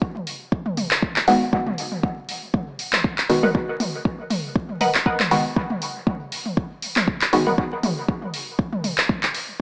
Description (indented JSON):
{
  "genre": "dub techno",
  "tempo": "119 BPM",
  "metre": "4/4",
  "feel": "swing 54% on 16ths",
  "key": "G# minor",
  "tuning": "A4 = 441 Hz",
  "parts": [
    { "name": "electronic kick drum", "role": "drums", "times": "0.0-9.2 s", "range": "none", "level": "-25 LUFS", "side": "equal", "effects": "studio reverb, cassette tape" },
    { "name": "electronic toms", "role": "percussion", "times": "0.2-9.2 s", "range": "none", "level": "-30 LUFS", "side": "equal", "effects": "sidechain pumping on toms, studio reverb, cassette tape, dub echo" },
    { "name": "deep house drum kit", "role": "drums", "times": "0.3-9.5 s", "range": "handclaps, hi-hat", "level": "-26 LUFS", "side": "equal", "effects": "studio reverb, cassette tape, dub echo" },
    { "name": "filtered dub chord stab", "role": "stabs", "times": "1.3-7.5 s", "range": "D#3 to F#4", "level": "-24 LUFS", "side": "equal", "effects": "chorus, phaser, sidechain pumping, cassette tape, dub echo" },
    { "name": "filtered dub chord stab", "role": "riff", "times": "3.4-7.5 s", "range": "A#4 to F#5", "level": "-28 LUFS", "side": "equal", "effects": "phaser, sidechain pumping, cassette tape, dub echo" }
  ],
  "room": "moderate spring reverb, RT60 2.1 s",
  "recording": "home recording on cassette, vinyl crackle, small speaker sound",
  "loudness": "-23 LUFS",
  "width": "mono",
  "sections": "0.0-2.0 A section; 2.0-9.6 A section",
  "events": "none",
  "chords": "0.0 G#m7"
}